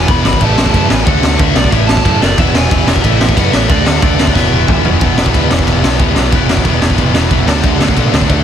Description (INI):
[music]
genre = punk rock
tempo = 183 BPM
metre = 4/4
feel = straight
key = E mixolydian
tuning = A4 = 439 Hz
[part]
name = crunchy overdriven guitar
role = melody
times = 0.0-4.8 s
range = D5 to B5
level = -18 LUFS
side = equal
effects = none
[part]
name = distorted electric guitar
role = riff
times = 0.0-8.4 s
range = E2 to D4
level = -18 LUFS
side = left 15 dB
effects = overdrive
[part]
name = distorted electric guitar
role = riff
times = 0.0-8.4 s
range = A2 to F#4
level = -19 LUFS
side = left 3 dB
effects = overdrive
[part]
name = overdriven electric guitar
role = riff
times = 0.0-8.4 s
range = E2 to D4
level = -18 LUFS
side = right 15 dB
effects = none
[part]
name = picked electric bass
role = bass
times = 0.0-8.4 s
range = E1 to B2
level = -16 LUFS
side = equal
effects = none
[part]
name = raw garage drum kit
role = drums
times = 0.1-8.4 s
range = kick drum, ride cymbal, snare drum, toms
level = -13 LUFS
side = equal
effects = none
[sound]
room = little or no reverb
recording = dense, heavily limited modern master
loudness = -9 LUFS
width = side -9 dB against mid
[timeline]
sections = 0.0-5.0 A section; 5.0-8.4 B section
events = drum fill 4.4-5.0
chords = 0.4 A; 1.1 D; 1.7 A; 2.4 E; 3.0 A; 3.7 D; 4.4 E; 7.5 D